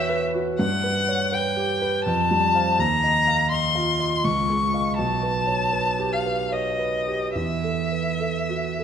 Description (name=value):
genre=classical, impressionist duo for violin and grand piano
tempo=64-83 BPM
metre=3/4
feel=rubato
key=unclear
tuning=A4 = 440 Hz
part: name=rich violin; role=melody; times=0.0-8.8 s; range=D#5 to C#6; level=-23 LUFS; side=left 2 dB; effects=none
part: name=warm concert grand piano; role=accompaniment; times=0.0-8.8 s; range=B1 to F5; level=-24 LUFS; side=right 2 dB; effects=none
room=moderate concert hall reverb, RT60 2.0 s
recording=minimal, uncompressed stereo recording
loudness=-20 LUFS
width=side -8 dB against mid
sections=0.0-8.8 A section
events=none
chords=0.0 Esus2; 0.6 G; 2.1 Fadd9; 2.8 D#sus2; 4.2 C#add9; 5.0 Baug7; 7.3 Esus24